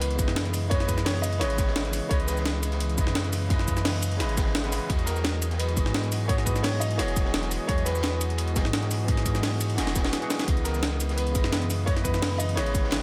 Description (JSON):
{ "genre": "liquid drum and bass", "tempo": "172 BPM", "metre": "4/4", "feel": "straight", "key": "C# minor", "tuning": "A4 = 442 Hz", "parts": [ { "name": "warm baby grand piano", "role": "melody", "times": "0.0-2.6, 5.1-8.2, 10.6-13.0 s", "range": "A#4 to D#5", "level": "-35 LUFS", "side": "equal", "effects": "delay" }, { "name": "overdriven tine electric piano", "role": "accompaniment", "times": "0.0-13.0 s", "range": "C#3 to F#5", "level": "-35 LUFS", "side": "equal", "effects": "digital delay" }, { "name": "warm analog pad", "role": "sustained chords", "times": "0.0-13.0 s", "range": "E3 to D#6", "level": "-41 LUFS", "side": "equal", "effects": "chorus, sidechain pumping" }, { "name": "warm sub bass", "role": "bass", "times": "0.0-13.0 s", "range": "E1 to G#2", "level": "-31 LUFS", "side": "equal", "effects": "none" }, { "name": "breakbeat sampler-style drum kit", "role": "drums", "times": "0.0-13.0 s", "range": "cabasa, hi-hat, snare drum", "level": "-33 LUFS", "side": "equal", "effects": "studio reverb" }, { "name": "crunchy breakbeat drum kit", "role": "drums", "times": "0.0-13.0 s", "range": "hi-hat, ride cymbal, snare drum", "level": "-39 LUFS", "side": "equal", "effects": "high-pass filter on cymbals, studio reverb, high-pass filter on hats, high-pass filter on snare, high-pass filter on room" }, { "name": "electronic kick drum", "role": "drums", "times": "0.2-12.8 s", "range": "none", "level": "-29 LUFS", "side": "equal", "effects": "studio reverb" } ], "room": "small room reverb", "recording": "none", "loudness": "-26 LUFS", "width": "mono", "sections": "0.0-13.0 A section", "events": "drum fill 9.8-10.5", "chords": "0.0 C#m7; 4.9 Emaj7; 10.5 C#m7", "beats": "0.01 0.36 | 0.71 1.06 1.41 1.76 | 2.11 2.46 2.80 3.15 | 3.50 3.85 4.20 4.55 | 4.90 5.25 5.59 5.94 | 6.29 6.64 6.99 7.34 | 7.69 8.04 8.39 8.73 | 9.08 9.43 9.78 10.13 | 10.48 10.83 11.18 11.53 | 11.87 12.22 12.57 12.92" }